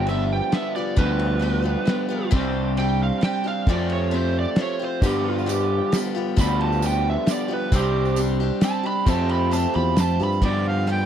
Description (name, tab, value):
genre	folk rock and heartland rock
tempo	133 BPM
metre	3/4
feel	straight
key	G mixolydian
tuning	A4 = 440 Hz
part	overdriven slide guitar	second line	0.0-10.4 s	F4 to B5	-26 LUFS	right 5 dB	none
part	picked acoustic archtop guitar	accompaniment	0.0-11.1 s	G2 to G4	-28 LUFS	left 8 dB	none
part	electric guitar through a small old amp	riff	0.0-11.1 s	G2 to G4	-27 LUFS	right 2 dB	spring reverb
part	picked electric bass	bass	0.0-11.1 s	G1 to G2	-23 LUFS	equal	none
part	cloth-damped thuddy drum kit	drums	0.1-11.0 s	crash cymbal, hi-hat, kick drum, ride cymbal, rim click, snare drum	-20 LUFS	equal	none
part	tambourine	percussion	5.0-10.4 s	none	-38 LUFS	right 26 dB	none
part	accordion	melody	10.4-11.1 s	D5 to G5	-26 LUFS	right 2 dB	slapback echo
room	little or no reverb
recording	dry, close 1970s-style studio recording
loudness	-20 LUFS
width	side -9 dB against mid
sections	0.0-10.4 A section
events	electric slide guitar solo 0.0-10.4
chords	0.0 G7; 2.3 Csus2; 3.7 Fadd9; 5.0 G7; 7.7 Csus2; 9.1 Fadd9; 10.4 G7